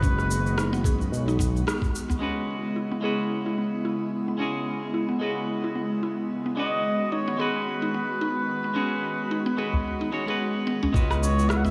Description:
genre	organic downtempo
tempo	110 BPM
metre	4/4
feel	swing 57% on 16ths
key	C# minor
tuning	A4 = 442 Hz
part	trumpet with cup mute	melody	0.0-0.8, 6.6-11.7 s	B4 to F#5	-33 LUFS	equal	digital delay, shimmer reverb
part	airy breathy pad	sustained chords	0.0-11.7 s	C#3 to F#4	-33 LUFS	equal	chorus, sidechain pumping, shimmer reverb
part	mallet-like synth pluck	arpeggios	0.0-11.7 s	B3 to G#4	-34 LUFS	equal	chorus, digital delay, shimmer reverb
part	smooth synth bass	bass	0.0-1.6, 10.9-11.7 s	F#1 to C#2	-27 LUFS	equal	none
part	electronic cabasa, rim click and woodblock	drums	0.0-2.2, 11.0-11.7 s	none	-35 LUFS	equal	none
part	electronic kick drum	drums	0.0-1.9, 10.9-11.1 s	none	-27 LUFS	equal	none
part	udu	percussion	1.0-2.2, 9.7-11.7 s	none	-32 LUFS	equal	none
part	clean electric guitar	accompaniment	2.2-11.7 s	G#3 to C#5	-33 LUFS	equal	sidechain pumping, digital delay, shimmer reverb
room	moderate echo chamber reverb, RT60 2.6 s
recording	studio ambience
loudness	-26 LUFS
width	mono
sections	0.0-2.2 A section; 2.2-10.9 B section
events	band accent 1.7; filter sweep on synth pluck 2.2-10.9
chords	0.0 G#m7; 2.2 C#m7; 6.6 G#m7; 10.9 C#m7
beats	| 0.03 0.58 1.12 1.67 | 2.21 2.76 3.31 3.85 | 4.40 4.94 5.49 6.03 | 6.58 7.12 7.67 8.21 | 8.76 9.30 9.85 10.40 | 10.94 11.49

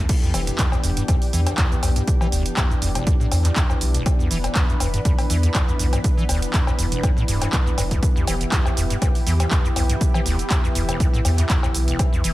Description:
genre	acid house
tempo	121 BPM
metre	4/4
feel	swing 54% on 16ths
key	E minor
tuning	A4 = 440 Hz
part	lush unison pad	sustained chords	0.0-12.3 s	E3 to B4	-28 LUFS	equal	chorus, sidechain pumping
part	acid bass, square	riff	0.0-12.3 s	E1 to E3	-25 LUFS	equal	overdrive, lush chorus, digital delay
part	electronic kick drum	drums	0.1-12.1 s	none	-20 LUFS	equal	none
part	punchy analog drum machine	drums	0.1-12.3 s	cowbell, crash cymbal, handclaps, hi-hat, shaker	-26 LUFS	equal	none
part	warm sub bass	bass	0.3-12.3 s	D1 to E2	-22 LUFS	equal	sidechain pumping
room	little or no reverb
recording	none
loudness	-18 LUFS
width	side -17 dB against mid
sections	0.1-12.3 A section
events	drop 0.1-12.3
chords	0.1 Em7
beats	| 0.09 0.59 1.08 1.58 | 2.08 2.57 3.07 3.56 | 4.06 4.55 5.05 5.55 | 6.04 6.54 7.03 7.53 | 8.03 8.52 9.02 9.51 | 10.01 10.51 11.00 11.50 | 11.99

